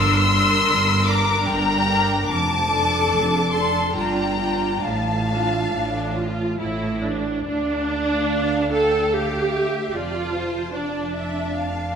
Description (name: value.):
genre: classical, slow romantic movement for string orchestra.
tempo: 70 BPM.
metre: 3/4.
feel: uneven beats, rubato.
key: D minor.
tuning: A4 = 439 Hz.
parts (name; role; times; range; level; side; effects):
rich studio violin section; melody; 0.0-12.0 s; F5 to E6; -25 LUFS; left 4 dB; none.
rich studio violin section; second line; 0.0-12.0 s; C5 to C6; -25 LUFS; left 2 dB; none.
rich studio viola section; accompaniment; 0.0-11.9 s; D4 to Bb4; -23 LUFS; right 1 dB; none.
dark studio cello section; bass; 0.0-12.0 s; D2 to A2; -28 LUFS; right 2 dB; none.
warm studio double bass section; bass; 0.0-12.0 s; F1 to D2; -28 LUFS; right 2 dB; none.
room: wet concert hall reverb, RT60 2.4 s.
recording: minimal, uncompressed stereo recording.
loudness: -19 LUFS.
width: side -7 dB against mid.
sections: 0.0-7.5 A section; 7.5-12.0 B section.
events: none.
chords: 0.0 Gm; 2.3 Dm/F; 4.0 Gm7; 4.8 Dm/A; 6.6 A5; 7.5 Dm; 10.0 Dm/F.